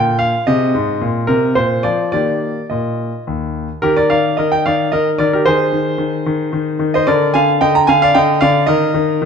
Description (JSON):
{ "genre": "classical-period piano sonatina", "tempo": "111 BPM", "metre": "3/4", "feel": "straight", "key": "Eb major", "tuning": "A4 = 438 Hz", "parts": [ { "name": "clear concert grand piano", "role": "solo", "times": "0.0-9.3 s", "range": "Eb2 to Bb5", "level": "-13 LUFS", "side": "equal", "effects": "none" } ], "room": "moderate recital hall reverb, RT60 1.6 s", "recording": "dark, warm production, nothing above 10.4 kHz", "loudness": "-13 LUFS", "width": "side -6 dB against mid", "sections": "0.0-3.8 A section; 3.8-9.3 B section", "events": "none", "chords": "0.5 Ab/C; 1.0 Eb5/Bb; 1.6 Bb; 2.1 Eb; 5.4 Ab/Eb; 7.1 Bb/D; 8.7 Eb5", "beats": "| 0.48 1.02 1.56 | 2.13 2.70 3.27 | 3.83 4.38 4.91 | 5.45 5.99 6.53 | 7.07 7.61 8.15 | 8.68 9.22" }